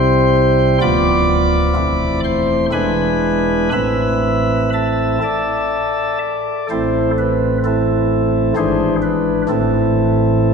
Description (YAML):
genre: classical, chorale-style piece for pipe organ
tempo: 59-66 BPM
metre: 3/4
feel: rubato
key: A minor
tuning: A4 = 440 Hz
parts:
  - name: pipe organ, flutes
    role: solo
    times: 0.0-10.5 s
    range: D1 to D6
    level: -14 LUFS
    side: equal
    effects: none
room: wet church reverb, RT60 2.9 s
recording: minimal, uncompressed stereo recording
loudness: -14 LUFS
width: side -5 dB against mid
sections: 0.0-6.7 A section; 6.7-10.5 B section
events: none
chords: 0.0 C; 0.8 Bdim/D; 1.8 Am/E; 2.7 E7; 3.7 Am; 8.6 E7/G#; 9.5 Am